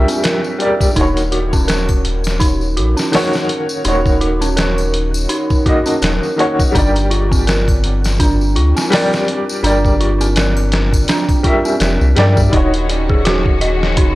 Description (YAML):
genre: trip hop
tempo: 83 BPM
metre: 4/4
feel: swing 57% on 16ths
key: unclear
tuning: A4 = 440 Hz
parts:
  - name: warm upright piano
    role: accompaniment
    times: 0.0-14.2 s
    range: Eb3 to Fb5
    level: -19 LUFS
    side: equal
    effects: tremolo, vintage 12-bit sampler grit, tape echo
  - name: dark detuned synth bell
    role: arpeggios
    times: 0.0-14.2 s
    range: C4 to Eb5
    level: -19 LUFS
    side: right 1 dB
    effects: chorus, tape echo
  - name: soft dub sub bass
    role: bass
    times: 0.0-14.2 s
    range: Eb1 to G2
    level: -16 LUFS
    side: equal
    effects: tube saturation
  - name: trip hop sampler-style drum kit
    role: drums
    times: 0.1-14.2 s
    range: hi-hat, kick drum, snare drum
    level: -17 LUFS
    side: equal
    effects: none
  - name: tambourine and triangle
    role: percussion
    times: 0.1-12.5 s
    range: none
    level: -29 LUFS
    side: left 2 dB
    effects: none
  - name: rich studio string section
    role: sustained chords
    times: 12.5-14.2 s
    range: Eb3 to Gb4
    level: -22 LUFS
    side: left 3 dB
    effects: none
room: small room ambience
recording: dry, gritty hardware recording, cassette tape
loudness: -12 LUFS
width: side -18 dB against mid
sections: 0.0-12.5 A section; 12.5-14.2 B section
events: none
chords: 0.0 Gm; 1.0 Ebm7; 6.7 Gm; 12.5 Ebm7